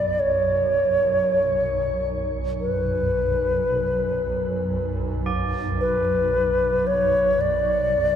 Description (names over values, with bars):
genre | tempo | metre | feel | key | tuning
world meditative, free-time meditation music | free time | none | none | B minor | A4 = 441 Hz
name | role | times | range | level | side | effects
xiao | melody | 0.0-8.2 s | B4 to D5 | -21 LUFS | equal | shimmer reverb
swarming drone | drone | 0.0-8.2 s | B1 to F#2 | -27 LUFS | right 1 dB | built-in reverb
tubular bells | texture | 0.0-8.2 s | B4 to D5 | -35 LUFS | right 5 dB | shimmer reverb
room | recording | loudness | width
wet cathedral reverb, RT60 6.5 s | none | -20 LUFS | side -9 dB against mid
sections
0.0-8.2 A section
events
none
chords
none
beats
free time